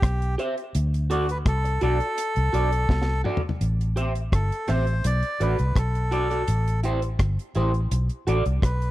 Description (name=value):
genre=roots reggae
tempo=84 BPM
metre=4/4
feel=straight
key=A dorian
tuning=A4 = 441 Hz
part: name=melodica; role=melody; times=0.0-8.9 s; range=F#4 to D5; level=-29 LUFS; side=equal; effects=tape echo
part: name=vintage muted fingered electric bass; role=bass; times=0.0-8.9 s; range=G1 to D2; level=-23 LUFS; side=equal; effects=none
part: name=deep reggae drum kit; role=drums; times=0.0-8.9 s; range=hi-hat, kick drum, rim click, snare drum, toms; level=-25 LUFS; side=equal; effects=none
part: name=electric guitar through a small old amp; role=accompaniment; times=0.4-8.4 s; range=E4 to E5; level=-29 LUFS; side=right 1 dB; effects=phaser, tape echo
room=small room reverb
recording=dry, close 1970s-style studio recording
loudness=-22 LUFS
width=side -16 dB against mid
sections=0.0-3.6 A section; 3.6-8.9 B section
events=drum fill 2.9-3.6; melodica solo 3.6-8.9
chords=0.0 C; 0.7 D; 3.6 Am7; 5.0 Bm7; 6.5 Am7; 7.9 Bm7